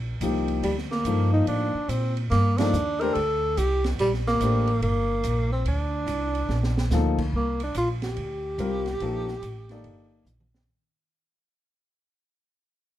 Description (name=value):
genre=modal jazz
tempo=143 BPM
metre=4/4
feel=swing 65% on 8ths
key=unclear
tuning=A4 = 441 Hz
part: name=upright bass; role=bass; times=0.0-10.7 s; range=G1 to Bb2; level=-26 LUFS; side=equal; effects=none
part: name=warm concert grand piano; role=accompaniment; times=0.2-10.2 s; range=F3 to D5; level=-28 LUFS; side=left 4 dB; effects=none
part: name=open jazz drum kit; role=drums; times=0.2-10.6 s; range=crash cymbal, hi-hat, kick drum, ride cymbal, snare drum, toms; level=-36 LUFS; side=right 3 dB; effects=none
part: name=breathy tenor saxophone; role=melody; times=0.6-10.2 s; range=G3 to Bb4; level=-26 LUFS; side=equal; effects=none
room=light reverb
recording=dark, warm production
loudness=-22 LUFS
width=side -13 dB against mid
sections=0.0-7.3 A section; 7.3-10.7 B section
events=band accent 2.5; drum fill 6.5-6.9, 10.3-10.7; fade-out 7.3-10.7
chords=0.0 Cm; 0.6 Gm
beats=0.21 | 0.63 1.05 1.47 1.89 | 2.31 2.73 3.15 3.57 | 3.99 4.41 4.83 5.25 | 5.66 6.08 6.50 6.92 | 7.34 7.75 8.17 8.59 | 9.01 9.43 9.84 10.26